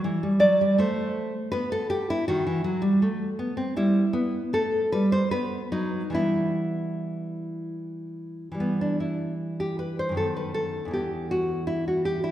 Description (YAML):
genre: classical, baroque-style dance for nylon-string guitar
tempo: 72-82 BPM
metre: 3/4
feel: rubato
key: E minor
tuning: A4 = 440 Hz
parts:
  - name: nylon-string guitar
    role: solo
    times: 0.0-12.3 s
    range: E2 to D5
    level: -24 LUFS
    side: equal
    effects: none
room: wet scoring stage reverb, RT60 1.7 s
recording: recorded in a church or concert hall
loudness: -23 LUFS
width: side -12 dB against mid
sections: 0.0-8.6 A section; 8.6-12.3 B section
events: none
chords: 0.0 Em; 0.8 N.C.; 1.5 B5; 3.0 B5/A; 3.8 Em/G; 4.5 Gadd9; 5.3 B; 6.1 Em; 10.2 B7/F#; 10.9 E5